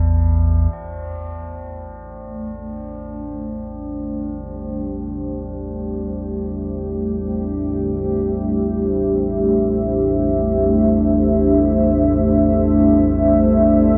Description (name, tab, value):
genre	dark ambient drone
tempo	free time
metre	none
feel	none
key	A minor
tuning	A4 = 440 Hz
part	tubular bells	arpeggios	0.0-14.0 s	C4 to E4	-40 LUFS	equal	tape echo
part	deep rumbling drone	drone	0.0-14.0 s	A1 to E2	-26 LUFS	equal	built-in reverb, subtle chorus
part	deep dark ambient pad	sustained chords	1.7-14.0 s	A3 to E5	-19 LUFS	equal	chorus, built-in reverb
room	wet cathedral reverb, RT60 7.0 s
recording	in a vast, echoing space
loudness	-18 LUFS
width	mono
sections	0.7-14.0 A section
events	fade-in on synth drone 0.7-14.0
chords	0.0 A5; 0.7 Am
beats	free time